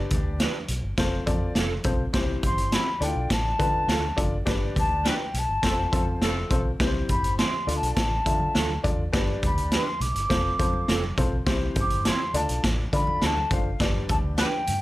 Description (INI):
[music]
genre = uptempo 1960s-style soul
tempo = 103 BPM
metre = 4/4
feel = straight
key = unclear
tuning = A4 = 440 Hz
[part]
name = warm upright piano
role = accompaniment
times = 0.0-14.5 s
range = C4 to E5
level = -31 LUFS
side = left 3 dB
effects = none
[part]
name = vintage muted fingered electric bass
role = bass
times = 0.0-14.8 s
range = F1 to D3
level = -29 LUFS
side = equal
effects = none
[part]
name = raw garage drum kit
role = drums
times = 0.1-14.8 s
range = hi-hat, kick drum, snare drum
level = -26 LUFS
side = equal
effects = none
[part]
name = electric guitar through a small old amp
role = stabs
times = 0.4-14.5 s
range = C4 to B4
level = -33 LUFS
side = right 6 dB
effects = ensemble chorus, analog delay
[part]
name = silver concert flute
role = melody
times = 2.5-14.8 s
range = F5 to D6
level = -27 LUFS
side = left 1 dB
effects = none
[part]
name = clear horn section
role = second line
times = 5.0-6.6, 14.4-14.5 s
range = F3 to B4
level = -32 LUFS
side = left 1 dB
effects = none
[part]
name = congas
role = percussion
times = 6.9-14.8 s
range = none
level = -38 LUFS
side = right 2 dB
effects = none
[sound]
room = light reverb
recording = faint mains hum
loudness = -22 LUFS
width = side -17 dB against mid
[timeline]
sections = 0.0-14.8 A section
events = band accent 4.5-6.8, 13.8-14.8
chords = 0.0 G; 1.0 F; 2.1 C; 3.0 Dm; 4.5 G; 5.6 F; 6.8 C; 7.7 Dm; 9.1 G; 10.3 F; 11.5 C; 12.3 Dm; 13.8 G